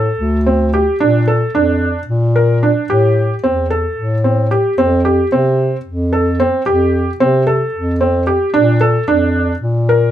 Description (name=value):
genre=contemporary instrumental, chamber music in an uneven meter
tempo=223 BPM (eighths)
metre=7/8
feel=straight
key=unclear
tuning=A4 = 441 Hz
part: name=felt-muted upright piano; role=arpeggios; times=0.0-10.1 s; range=C4 to Bb4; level=-14 LUFS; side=right 1 dB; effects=none
part: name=dark bass clarinet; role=bass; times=0.0-10.1 s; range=D2 to C3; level=-15 LUFS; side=equal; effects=none
room=little or no reverb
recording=close, detailed microphones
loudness=-12 LUFS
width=side -11 dB against mid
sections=0.0-4.8 A section; 4.8-10.1 B section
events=none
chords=0.0 D5; 1.0 Bb; 2.9 Am7; 4.8 Fadd9; 8.5 Bbmaj7